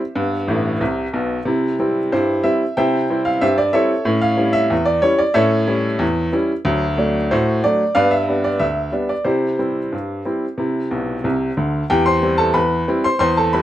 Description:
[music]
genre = ragtime piano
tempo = 92 BPM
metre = 2/4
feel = straight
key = C major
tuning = A4 = 441 Hz
[part]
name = bright upright piano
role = solo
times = 0.0-13.6 s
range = A1 to C6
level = -16 LUFS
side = equal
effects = none
[sound]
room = light reverb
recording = band playing live in one room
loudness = -16 LUFS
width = side -12 dB against mid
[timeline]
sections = 0.0-11.9 A section; 11.9-13.6 B section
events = upright piano fill 0.5-1.5, 10.9-11.9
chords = 0.1 G; 1.5 C; 4.1 A7; 6.7 D; 8.0 G; 9.3 C; 11.9 C/E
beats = | 0.15 0.80 | 1.46 2.11 | 2.77 3.42 | 4.07 4.72 | 5.37 6.02 | 6.67 7.32 | 7.97 8.62 | 9.28 9.93 | 10.59 11.25 | 11.91 12.56 | 13.21

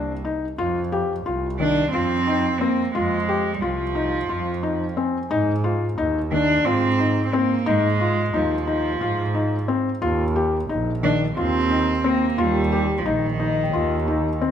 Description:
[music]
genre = contemporary instrumental, chamber music in an uneven meter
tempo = 178 BPM (eighths)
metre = 7/8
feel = straight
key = unclear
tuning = A4 = 442 Hz
[part]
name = rich cello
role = melody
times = 0.0-14.4 s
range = Eb3 to D4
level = -23 LUFS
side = right 3 dB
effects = none
[part]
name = felt-muted upright piano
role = arpeggios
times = 0.0-14.5 s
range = Eb3 to G4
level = -23 LUFS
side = left 4 dB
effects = none
[part]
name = clear double bass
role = bass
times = 0.0-14.5 s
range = Bb1 to Ab2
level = -26 LUFS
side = right 2 dB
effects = none
[part]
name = large celesta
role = texture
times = 0.9-5.6, 12.1-14.5 s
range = Eb5 to Ab5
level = -33 LUFS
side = left 10 dB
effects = none
[sound]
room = moderate recital hall reverb, RT60 1.4 s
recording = none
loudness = -19 LUFS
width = side -9 dB against mid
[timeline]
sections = 0.6-14.5 A section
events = none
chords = 0.0 Cm7; 0.6 F5; 5.3 Ab5; 10.0 Ebadd9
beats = 0.24 | 0.58 0.92 1.25 1.59 1.93 2.27 2.60 | 2.94 3.28 3.61 3.95 4.29 4.63 4.96 | 5.30 5.64 5.97 6.31 6.65 6.99 7.32 | 7.66 8.00 8.34 8.67 9.01 9.35 9.69 | 10.02 10.36 10.70 11.04 11.37 11.71 12.05 | 12.39 12.72 13.06 13.40 13.74 14.07 14.41

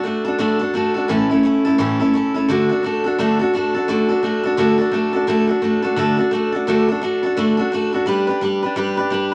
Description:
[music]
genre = rock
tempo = 172 BPM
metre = 4/4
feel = swing 60% on 8ths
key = D major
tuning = A4 = 440 Hz
[part]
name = picked steel-string acoustic guitar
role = solo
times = 0.0-9.3 s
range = A2 to B4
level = -18 LUFS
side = equal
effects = none
[sound]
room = wet small room ambience, RT60 0.5 s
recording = none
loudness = -18 LUFS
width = mono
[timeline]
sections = 0.0-2.5 A section; 2.5-9.3 B section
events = none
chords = 0.0 D; 1.1 A; 2.5 D; 8.1 G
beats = 0.04 0.39 0.74 | 1.09 1.44 1.79 2.14 | 2.49 2.84 3.19 3.54 | 3.88 4.23 4.58 4.93 | 5.28 5.63 5.98 6.33 | 6.68 7.02 7.37 7.72 | 8.07 8.42 8.77 9.12

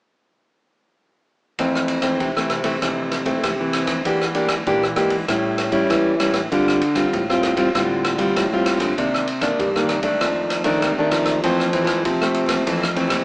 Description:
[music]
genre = samba and choro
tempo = 98 BPM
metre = 4/4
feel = straight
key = F major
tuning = A4 = 440 Hz
[part]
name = nylon-string guitar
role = accompaniment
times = 1.6-13.2 s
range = F2 to G4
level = -19 LUFS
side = equal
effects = none
[part]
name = nylon-string guitar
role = bass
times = 1.6-13.2 s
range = E2 to G3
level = -24 LUFS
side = equal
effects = none
[part]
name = open jazz drum kit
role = drums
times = 1.6-13.2 s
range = kick drum, ride cymbal, rim click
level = -24 LUFS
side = equal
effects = none
[sound]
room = moderate large studio reverb, RT60 1.2 s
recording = band playing live in one room, small speaker sound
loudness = -17 LUFS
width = side -25 dB against mid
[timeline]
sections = 1.6-11.4 A section; 11.4-13.2 B section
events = none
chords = 1.6 Fmaj7; 4.1 Em7b5; 5.3 A7; 6.5 Dm7; 9.0 Cm9; 10.2 F6; 11.4 Fmaj7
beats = | 1.59 2.20 2.82 3.44 | 4.05 4.67 5.28 5.90 | 6.51 7.13 7.75 8.36 | 8.98 9.59 10.21 10.82 | 11.44 12.05 12.67

